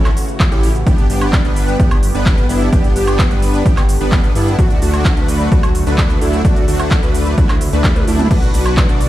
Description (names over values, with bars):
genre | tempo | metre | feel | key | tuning
EDM, festival progressive house | 129 BPM | 4/4 | straight | D major | A4 = 440 Hz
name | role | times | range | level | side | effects
lush unison pad | sustained chords | 0.0-9.1 s | C#3 to G4 | -24 LUFS | equal | chorus, phaser, sidechain pumping
supersaw chords | riff | 0.0-9.1 s | A3 to D5 | -20 LUFS | equal | analog chorus, sidechain pumping, dub echo
fat analog bass | bass | 0.0-9.1 s | G1 to G2 | -18 LUFS | equal | sidechain pumping
big-room dance drum kit | drums | 0.1-9.1 s | cabasa, crash cymbal, handclaps, hi-hat, toms, woodblock | -23 LUFS | right 1 dB | overdrive
electronic kick drum | drums | 0.4-8.9 s | none | -14 LUFS | equal | overdrive
room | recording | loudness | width
little or no reverb | played on a big sound system in a bare room, stone room reverb | -11 LUFS | side -14 dB against mid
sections
0.0-8.3 A section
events
drop 0.0-8.3; drum fill 7.8-8.3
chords
0.0 A; 0.9 G; 4.6 D; 8.3 Bm